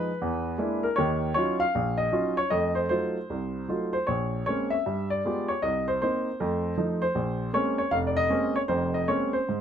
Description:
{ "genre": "solo jazz", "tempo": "156 BPM", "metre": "4/4", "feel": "swing 64% on 8ths, rubato", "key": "Bb minor", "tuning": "A4 = 440 Hz", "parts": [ { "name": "warm baby grand piano", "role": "solo", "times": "0.0-9.6 s", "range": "F1 to F5", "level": "-24 LUFS", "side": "equal", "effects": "none" } ], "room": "little or no reverb", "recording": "close, detailed microphones", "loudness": "-24 LUFS", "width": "side -8 dB against mid", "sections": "0.0-9.6 A section", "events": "none", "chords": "0.2 E7#11; 1.0 Ebm9; 2.5 F7b9; 4.1 Bbm9; 4.9 G7b9; 5.6 Cm7; 6.4 F7; 7.2 Bbm9" }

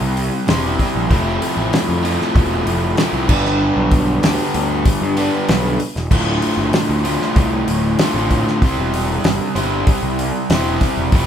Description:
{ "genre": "psychedelic rock", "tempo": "96 BPM", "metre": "4/4", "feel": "straight", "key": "unclear", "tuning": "A4 = 439 Hz", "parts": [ { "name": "overdriven semi-hollow guitar", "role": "riff", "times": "0.0-11.3 s", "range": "D2 to C5", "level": "-18 LUFS", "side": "equal", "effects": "none" }, { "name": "fuzz picked electric bass", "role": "bass", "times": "0.0-11.3 s", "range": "D1 to G2", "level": "-21 LUFS", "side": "equal", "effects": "overdrive" }, { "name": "damped 70s drum kit", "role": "drums", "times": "0.2-11.3 s", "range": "crash cymbal, hi-hat, kick drum, snare drum", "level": "-19 LUFS", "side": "equal", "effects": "none" } ], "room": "moderate large studio reverb, RT60 1.1 s", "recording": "band playing live in one room", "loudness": "-14 LUFS", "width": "side -9 dB against mid", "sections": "0.0-11.3 A section", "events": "none", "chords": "0.0 C7; 1.1 Fmaj7; 3.3 G; 6.1 Dm7; 8.6 C" }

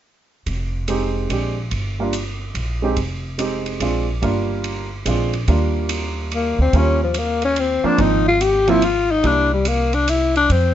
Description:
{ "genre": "jazz, small-group swing and bop", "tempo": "144 BPM", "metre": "3/4", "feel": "swing 66% on 8ths", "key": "Eb major", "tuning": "A4 = 439 Hz", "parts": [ { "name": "upright bass", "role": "bass", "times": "0.5-10.7 s", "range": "F1 to F2", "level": "-22 LUFS", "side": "equal", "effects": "none" }, { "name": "swinging big-band drum kit", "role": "drums", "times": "0.5-10.6 s", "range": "hi-hat, kick drum, ride cymbal", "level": "-28 LUFS", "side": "right 2 dB", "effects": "none" }, { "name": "warm concert grand piano", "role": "accompaniment", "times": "0.9-9.5 s", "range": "F3 to G4", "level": "-22 LUFS", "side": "right 3 dB", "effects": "none" }, { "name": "growling tenor saxophone", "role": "melody", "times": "6.3-10.7 s", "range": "F3 to G4", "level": "-17 LUFS", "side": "left 4 dB", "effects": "none" } ], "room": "light reverb", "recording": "nothing above 7.7 kHz", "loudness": "-17 LUFS", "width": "side -11 dB against mid", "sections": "0.5-5.5 A section; 5.5-10.7 B section", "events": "none", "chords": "0.5 Fm7; 1.3 Bb7; 1.7 Gm7; 2.6 Bb13sus4; 3.0 Fm7; 3.8 Bb7; 4.2 Gm7; 5.1 Bb7; 5.5 Ebmaj9; 6.7 Eb7; 8.0 Ab6; 9.2 C7" }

